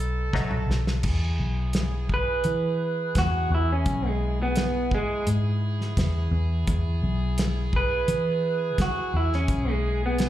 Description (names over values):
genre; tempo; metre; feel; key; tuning
straight-eighth soul blues; 85 BPM; 4/4; straight; E major; A4 = 440 Hz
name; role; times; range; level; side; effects
bright horn section; sustained chords; 0.0-10.3 s; B3 to A4; -37 LUFS; equal; none
vintage muted fingered electric bass; bass; 0.0-10.3 s; B1 to E3; -25 LUFS; equal; none
direct-recorded clean electric guitar; stabs; 0.3-0.6 s; F#3 to F#4; -33 LUFS; left 4 dB; ensemble chorus, slapback echo
warm soul drum kit; drums; 0.3-10.3 s; crash cymbal, hi-hat, kick drum, snare drum, toms; -28 LUFS; equal; none
electric guitar through a small old amp; melody; 2.1-10.3 s; G#3 to B4; -26 LUFS; right 2 dB; slapback echo
room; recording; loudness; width
small room ambience; live gig heard through the venue's PA, club reverb; -23 LUFS; side -13 dB against mid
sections
0.0-1.0 A section; 1.0-10.3 B section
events
drum fill 0.3-1.0; clean electric guitar solo 1.0-10.3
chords
0.0 B7; 1.0 E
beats
0.34 | 1.04 1.75 2.45 3.15 | 3.86 4.56 5.27 5.97 | 6.67 7.38 8.08 8.78 | 9.49 10.19